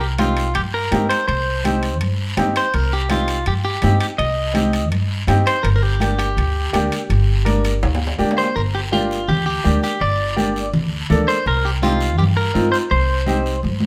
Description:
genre	latin, cumbia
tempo	165 BPM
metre	4/4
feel	straight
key	G minor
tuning	A4 = 440 Hz
part	electric guitar at the edge of break-up	melody	0.0-13.6 s	F4 to Eb5	-24 LUFS	equal	spring reverb
part	upright bass	bass	0.0-13.9 s	G1 to G2	-22 LUFS	equal	none
part	clear upright piano	accompaniment	0.2-13.5 s	Bb3 to Bb4	-25 LUFS	equal	none
part	congas	percussion	0.2-13.9 s	none	-26 LUFS	equal	none
part	guiro	percussion	0.2-13.9 s	none	-34 LUFS	equal	none
part	timbales	percussion	0.2-8.5 s	none	-31 LUFS	equal	none
room	moderate studio reverb, RT60 0.7 s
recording	none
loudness	-19 LUFS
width	mono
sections	0.0-8.6 A section; 8.6-13.9 A section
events	drum fill 7.8-8.6, 13.6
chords	0.0 Cm; 5.6 Gm; 11.5 Cm

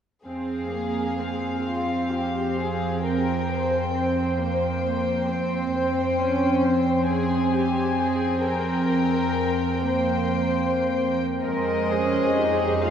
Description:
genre	classical, slow romantic movement for string orchestra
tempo	37-45 BPM (dotted quarters)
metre	6/8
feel	rubato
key	F minor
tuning	A4 = 440 Hz
part	warm studio violin section	melody	0.3-12.9 s	Eb5 to Ab5	-30 LUFS	left 4 dB	none
part	dark studio violin section	second line	0.3-12.9 s	F4 to C5	-27 LUFS	left 1 dB	none
part	warm studio viola section	accompaniment	0.3-12.9 s	Ab3 to Eb4	-27 LUFS	right 1 dB	none
part	warm studio cello section	bass	0.3-12.9 s	F2 to Bb4	-26 LUFS	right 1 dB	none
part	dark symphonic double bass section	bass	11.4-12.9 s	F2	-31 LUFS	right 6 dB	none
room	wet cathedral reverb, RT60 5.5 s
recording	heard from further back in the room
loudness	-21 LUFS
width	side -8 dB against mid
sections	0.3-11.4 A section; 11.4-12.9 B section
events	none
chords	0.3 Fm; 8.4 C5/F; 11.4 Fm

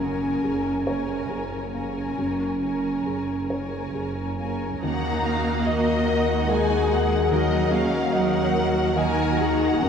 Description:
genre	cinematic, emotional film score for orchestra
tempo	71 BPM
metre	3/4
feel	uneven beats, rubato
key	Eb minor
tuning	A4 = 442 Hz
part	warm symphonic violin section	melody	0.0-9.9 s	Gb5 to Bb5	-34 LUFS	left 2 dB	none
part	warm symphonic violin section	second line	0.0-9.9 s	Bb4 to Ab5	-31 LUFS	left 2 dB	none
part	felt-muted upright piano	accompaniment	0.0-9.9 s	Eb2 to Eb5	-28 LUFS	equal	none
part	rich symphonic viola section	accompaniment	0.0-9.9 s	Db4 to Bb4	-31 LUFS	right 1 dB	none
part	concert harp	arpeggios	0.0-9.9 s	Gb2 to Eb5	-34 LUFS	left 3 dB	none
part	warm chamber double bass section	bass	0.0-9.9 s	Gb1 to Eb2	-29 LUFS	right 2 dB	none
part	warm symphonic cello section	bass	0.0-9.9 s	Gb2 to Bb3	-30 LUFS	right 3 dB	none
part	mellow French horn section	sustained chords	4.8-9.9 s	Eb4 to Bb4	-25 LUFS	left 4 dB	none
room	wet cathedral reverb, RT60 4.2 s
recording	minimal, uncompressed stereo recording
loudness	-21 LUFS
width	side -7 dB against mid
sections	0.0-4.8 A section; 4.8-9.9 B section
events	none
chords	0.0 Gbadd9; 4.8 Ebm

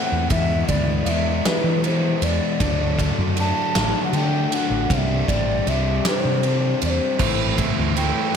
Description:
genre	quiet-loud alternative rock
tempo	52 BPM (dotted quarters)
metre	6/8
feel	straight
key	unclear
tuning	A4 = 440 Hz
part	alto ocarina	melody	0.0-8.4 s	B4 to A5	-25 LUFS	equal	slapback echo, tape echo
part	distorted electric guitar	riff	0.0-8.4 s	A2 to E4	-27 LUFS	right 1 dB	distortion
part	overdriven semi-hollow guitar	riff	0.0-8.4 s	A2 to E4	-26 LUFS	left 12 dB	phaser
part	fingered electric bass	bass	0.1-8.1 s	A1 to E3	-23 LUFS	right 1 dB	none
part	big rock drum kit	drums	0.3-8.1 s	crash cymbal, kick drum, ride cymbal, snare drum	-24 LUFS	right 1 dB	none
part	distorted electric guitar	riff	7.2-8.4 s	A2 to E4	-25 LUFS	right 12 dB	overdrive
room	moderate lush hall reverb, RT60 2.6 s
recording	big arena sound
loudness	-18 LUFS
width	side -7 dB against mid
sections	0.0-8.4 A section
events	none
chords	0.3 E; 2.6 D; 4.9 Csus2; 7.2 Am7

